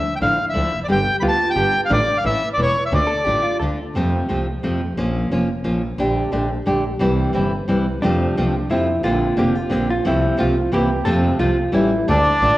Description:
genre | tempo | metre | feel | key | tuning
tango | 177 BPM | 3/4 | rubato | D harmonic minor, F major from 3.9 s | A4 = 440 Hz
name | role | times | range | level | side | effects
bandoneon | melody | 0.0-3.6, 12.1-12.6 s | D4 to B5 | -18 LUFS | equal | none
nylon-string guitar | accompaniment | 0.2-12.6 s | C3 to G4 | -20 LUFS | equal | none
clear double bass | bass | 0.2-12.6 s | E1 to F2 | -23 LUFS | equal | none
vintage hollow-body jazz guitar | second line | 1.2-3.9, 8.0-12.1 s | D4 to A4 | -23 LUFS | right 1 dB | none
room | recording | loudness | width
wet recital hall reverb, RT60 1.4 s | worn, warbling old tape, cassette tape, warbly pitch drift | -17 LUFS | side -16 dB against mid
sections
0.0-3.9 A section; 3.9-12.1 B section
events
none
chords
0.0 Dmadd9; 0.9 G; 1.9 Dm/A; 2.2 A; 2.9 Dm; 3.9 F; 5.0 Bbm; 6.0 Gmadd9/Bb; 7.0 C; 8.0 F; 9.0 Bbadd9; 10.0 F/C; 10.7 C7; 11.1 F; 11.7 A7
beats
0.20 0.55 | 0.89 1.23 1.57 | 1.91 2.24 2.58 | 2.92 3.26 3.60 | 3.94 4.29 4.63 | 4.97 5.31 5.64 | 5.98 6.32 6.66 | 7.00 7.34 7.68 | 8.02 8.36 8.70 | 9.04 9.38 9.71 | 10.05 10.38 10.72 | 11.06 11.40 11.74 | 12.08 12.42

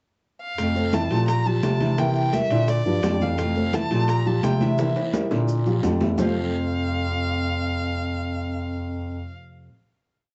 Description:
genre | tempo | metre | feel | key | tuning
latin, Cuban son and guajira | 171 BPM | 4/4 | straight | F major | A4 = 442 Hz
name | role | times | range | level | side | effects
warm violin | melody | 0.4-9.4 s | D5 to Bb5 | -31 LUFS | equal | none
nylon-string guitar | accompaniment | 0.6-9.7 s | F2 to G4 | -34 LUFS | equal | none
warm bass clarinet | bass | 0.6-9.3 s | F2 to C3 | -27 LUFS | equal | none
bongos | percussion | 0.6-6.3 s | none | -36 LUFS | equal | none
congas | percussion | 0.6-6.3 s | none | -32 LUFS | equal | none
guiro | percussion | 0.6-6.3 s | none | -47 LUFS | equal | none
maracas | percussion | 0.6-6.3 s | none | -51 LUFS | equal | none
timbales | percussion | 0.6-6.3 s | none | -36 LUFS | equal | none
dark concert grand piano | arpeggios | 0.8-9.4 s | D3 to F5 | -30 LUFS | equal | none
room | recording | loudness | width
moderate studio reverb, RT60 0.8 s | dark, warm production, nothing above 7.9 kHz | -23 LUFS | mono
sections
0.0-0.6 pickup bar; 0.6-6.2 montuno (vamp); 6.2-9.0 final chord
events
drum fill 4.8-6.2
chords
0.0 N.C.; 0.6 Fmaj7; 1.3 Bb6; 2.0 C7; 2.7 Bb6; 3.4 Fmaj7; 4.1 Bb6; 4.8 C7; 5.5 Bb6; 6.2 F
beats
0.23 | 0.58 0.93 1.28 1.63 | 1.98 2.33 2.68 3.03 | 3.38 3.73 4.08 4.44 | 4.79 5.14 5.49 5.84 | 6.19 6.54 6.88 7.24 | 7.58 7.93 8.28 8.63

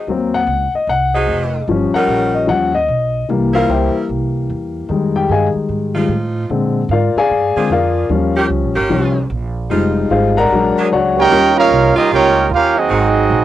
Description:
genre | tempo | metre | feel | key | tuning
jazz, big band swing | 150 BPM | 4/4 | swing 64% on 8ths | Eb mixolydian | A4 = 438 Hz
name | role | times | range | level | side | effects
warm grand piano | accompaniment | 0.0-12.4 s | D3 to Bb5 | -15 LUFS | left 4 dB | cassette tape
clear saxophone section | sustained chords | 0.0-13.1 s | Eb3 to Bb4 | -20 LUFS | right 2 dB | cassette tape
upright bass | bass | 0.1-13.4 s | F1 to Bb2 | -20 LUFS | right 2 dB | none
clear trumpet section | melody | 11.2-13.4 s | C4 to G5 | -12 LUFS | right 3 dB | cassette tape
warm trombone section | second line | 11.2-13.4 s | Gb3 to G4 | -18 LUFS | right 8 dB | cassette tape
room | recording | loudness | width
light reverb | home recording on cassette | -13 LUFS | side -12 dB against mid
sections
0.0-11.3 A section; 11.3-13.4 B section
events
grand piano solo 0.0-11.3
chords
0.0 Ab7; 1.7 Eb7; 3.3 C7; 4.9 Fm7; 6.5 Bb7; 8.1 Eb7; 9.7 Fm7; 10.5 Bb7alt; 11.3 Eb7; 12.9 Ab7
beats
| 0.08 0.48 0.88 1.28 | 1.68 2.08 2.49 2.89 | 3.29 3.69 4.09 4.49 | 4.89 5.29 5.70 6.10 | 6.50 6.90 7.30 7.70 | 8.10 8.50 8.90 9.30 | 9.71 10.11 10.51 10.91 | 11.31 11.71 12.11 12.51 | 12.91 13.31

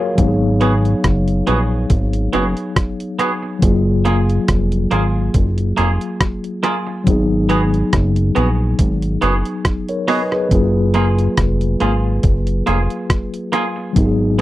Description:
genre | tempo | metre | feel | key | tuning
lovers rock reggae | 70 BPM | 4/4 | swing 55% on 16ths | F# major | A4 = 441 Hz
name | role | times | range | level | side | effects
mellow tine electric piano | accompaniment | 0.0-14.4 s | F#3 to E#5 | -19 LUFS | left 2 dB | medium stereo tremolo
twangy electric guitar | stabs | 0.0-14.4 s | A#3 to G#4 | -20 LUFS | right 3 dB | spring reverb
fat analog bass | bass | 0.2-14.4 s | E#1 to A#1 | -17 LUFS | equal | none
detuned 8-bit digital drum machine | drums | 0.2-14.4 s | hi-hat, kick drum, rim click | -17 LUFS | equal | none
room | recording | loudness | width
little or no reverb | dry, close 1970s-style studio recording | -14 LUFS | side -16 dB against mid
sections
0.0-14.4 A section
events
none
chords
0.2 G#m7; 3.6 F#maj9; 7.1 G#m7; 10.5 F#maj9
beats
| 0.18 1.04 1.90 2.76 | 3.62 4.48 5.34 6.21 | 7.07 7.93 8.79 9.65 | 10.51 11.38 12.24 13.10 | 13.96

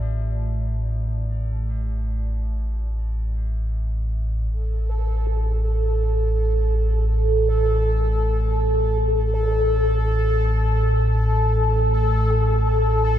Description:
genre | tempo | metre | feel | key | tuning
dark ambient drone | free time | none | none | unclear | A4 = 436 Hz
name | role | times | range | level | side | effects
tubular bells | arpeggios | 0.0-4.5 s | D4 to E4 | -45 LUFS | left 4 dB | ping-pong delay
deep rumbling drone | drone | 0.0-13.2 s | A1 to A2 | -20 LUFS | equal | built-in reverb, lush chorus
bubbling stepped-filter texture | texture | 4.5-13.2 s | A4 | -23 LUFS | equal | chorus, built-in reverb
room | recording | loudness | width
moderate huge ambient reverb, RT60 7.2 s | dark, warm production | -19 LUFS | side -11 dB against mid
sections
0.0-4.5 A section; 4.5-13.2 B section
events
none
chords
0.0 A5; 4.5 N.C.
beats
free time

